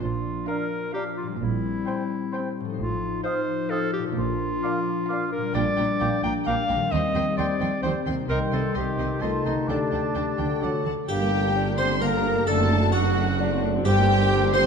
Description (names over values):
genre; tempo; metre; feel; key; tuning
cinematic, playful, whimsical film cue; 130 BPM; 3/4; straight; Bb major, G minor from 5.5 s; A4 = 440 Hz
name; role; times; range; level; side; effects
bright clarinet; second line; 0.0-14.7 s; D4 to G5; -29 LUFS; left 1 dB; none
dark French horn section; sustained chords; 0.0-14.7 s; F3 to G4; -30 LUFS; left 4 dB; none
concert harp; arpeggios; 0.0-14.7 s; F#2 to C5; -31 LUFS; left 5 dB; none
rich studio double bass section; bass; 0.0-14.7 s; F#1 to Eb2; -31 LUFS; right 6 dB; none
warm studio cello section; bass; 0.0-14.7 s; F#2 to Eb3; -30 LUFS; right 4 dB; none
rich studio violin section; melody; 0.5-14.7 s; F#5 to C6; -32 LUFS; left 5 dB; none
clear oboe; second line; 0.5-14.6 s; F#4 to A5; -34 LUFS; right 3 dB; none
mellow hollow silver concert flute; second line; 0.5-10.9 s; Bb5 to Eb6; -38 LUFS; equal; none
rich chamber violin section; second line; 0.5-14.7 s; F#4 to G5; -34 LUFS; left 2 dB; none
dark studio viola section; accompaniment; 0.5-14.7 s; G3 to G4; -33 LUFS; right 2 dB; none
mellow bassoon; accompaniment; 0.5-14.7 s; Eb3 to F#4; -33 LUFS; right 1 dB; none
harpsichord; melody; 11.1-14.7 s; F#4 to C5; -31 LUFS; right 1 dB; none
warm tuba; bass; 11.1-14.7 s; F#1 to G1; -31 LUFS; right 4 dB; none
room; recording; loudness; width
moderate concert hall reverb, RT60 1.7 s; dark, warm production; -22 LUFS; side -6 dB against mid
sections
0.0-11.1 A section; 11.1-14.7 B section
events
none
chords
0.0 Bb; 1.4 C7/Bb; 2.8 F7/A; 4.2 Bb; 5.5 Gm/Bb; 6.9 Cm/Eb; 8.3 Cm; 9.2 Adim/C; 9.7 Dsus4; 10.6 D; 11.1 Gm; 12.5 D7/F#; 13.9 Gm